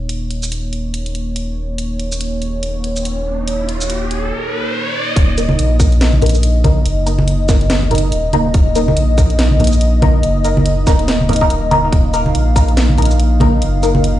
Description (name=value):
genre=deep dubstep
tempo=142 BPM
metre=4/4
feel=swing 58% on 16ths, half-time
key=Eb minor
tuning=A4 = 440 Hz
part: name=dark analog pad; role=sustained chords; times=0.0-14.2 s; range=Bb3 to F5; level=-21 LUFS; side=equal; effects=chorus
part: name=saturated sub bass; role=bass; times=0.0-14.2 s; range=Eb1 to Bb1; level=-16 LUFS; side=equal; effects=none
part: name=garage drum kit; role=drums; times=0.1-14.1 s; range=hi-hat, shaker, snare drum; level=-22 LUFS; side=right 1 dB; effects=studio reverb
part: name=riser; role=sound effects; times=2.9-5.2 s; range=none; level=-22 LUFS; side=right 1 dB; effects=none
part: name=electronic kick drum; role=drums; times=5.2-13.5 s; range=none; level=-14 LUFS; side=equal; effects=studio reverb
part: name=filtered dub chord stab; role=stabs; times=5.4-14.2 s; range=Bb3 to Bb4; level=-20 LUFS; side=left 1 dB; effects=phaser, lush chorus, vintage 12-bit sampler grit, dub echo
part: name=congas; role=percussion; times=5.5-14.0 s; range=none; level=-19 LUFS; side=right 2 dB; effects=none
room=little or no reverb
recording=played on a big sound system in a bare room, stone room reverb, nothing above 10.9 kHz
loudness=-12 LUFS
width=side -13 dB against mid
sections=0.0-5.2 A section; 5.2-14.2 B section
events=riser 2.9-5.2; drop 5.2-14.2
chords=0.0 Eb5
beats=| 0.09 0.52 0.94 1.36 | 1.78 2.21 2.63 3.05 | 3.47 3.90 4.32 4.74 | 5.16 5.59 6.01 6.43 | 6.85 7.28 7.70 8.12 | 8.54 8.97 9.39 9.81 | 10.23 10.66 11.08 11.50 | 11.92 12.35 12.77 13.19 | 13.62 14.04